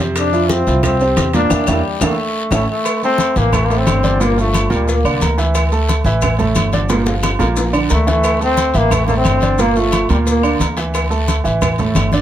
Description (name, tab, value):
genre	latin, salsa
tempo	178 BPM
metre	4/4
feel	straight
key	D minor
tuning	A4 = 440 Hz
part	clear grand piano	accompaniment	0.0-12.2 s	A2 to Bb5	-18 LUFS	right 3 dB	none
part	upright bass	bass	0.0-12.2 s	G1 to F2	-18 LUFS	equal	none
part	maracas	percussion	0.0-12.2 s	none	-31 LUFS	left 6 dB	none
part	bright trombone	melody	0.2-5.2, 7.9-10.6 s	G3 to D4	-18 LUFS	left 2 dB	none
part	bongos and cowbell	percussion	0.2-12.2 s	none	-26 LUFS	left 5 dB	none
part	claves	percussion	0.2-12.1 s	none	-31 LUFS	left 4 dB	none
part	congas	percussion	0.2-12.2 s	none	-22 LUFS	left 2 dB	none
part	guiro	percussion	0.2-12.2 s	none	-30 LUFS	left 5 dB	none
part	timbales and agogo bells	percussion	0.2-12.1 s	none	-25 LUFS	right 6 dB	none
room	little or no reverb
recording	close, detailed microphones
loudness	-13 LUFS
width	side -11 dB against mid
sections	0.0-2.9 A section; 2.9-12.2 B section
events	band accent 1.5-2.9; drum fill 2.4-2.9, 6.9-8.2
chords	0.2 F5; 1.5 Em7b5; 2.2 A; 2.9 Dsus2; 4.2 Gm7; 5.6 Dsus2; 6.9 Gm7; 8.2 Dsus2; 9.6 Gm7; 10.9 Dsus2